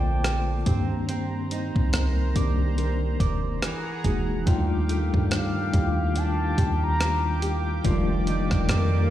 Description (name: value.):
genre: contemporary R&B.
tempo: 71 BPM.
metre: 4/4.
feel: swing 58% on 16ths.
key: unclear.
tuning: A4 = 440 Hz.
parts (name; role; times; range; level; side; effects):
mellow horn-like synth lead; melody; 0.0-7.4 s; F5 to Bb5; -30 LUFS; left 2 dB; chorus, digital delay.
mellow tine electric piano; accompaniment; 0.0-9.1 s; D3 to G4; -29 LUFS; left 2 dB; fast stereo tremolo.
warm analog pad; sustained chords; 0.0-9.1 s; G4 to D6; -35 LUFS; right 1 dB; chorus, tremolo.
nylon-string guitar; arpeggios; 0.0-9.1 s; Eb3 to D5; -33 LUFS; right 3 dB; digital delay.
soft 808-style bass; bass; 0.0-9.1 s; E1 to G2; -25 LUFS; equal; none.
clean 12-bit digital drum machine; drums; 0.2-8.9 s; hi-hat, kick drum, rim click; -26 LUFS; equal; none.
swell; sound effects; 7.7-9.1 s; none; -35 LUFS; right 3 dB; none.
room: little or no reverb.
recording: played on a big sound system in a bare room, large studio reverb.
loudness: -22 LUFS.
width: side -12 dB against mid.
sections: 0.0-9.1 A section.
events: swell 7.7-9.1.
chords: 0.0 Bbmaj9; 0.7 Cm9; 3.6 Emaj9#11; 4.5 Ebmaj9#11; 7.8 F13.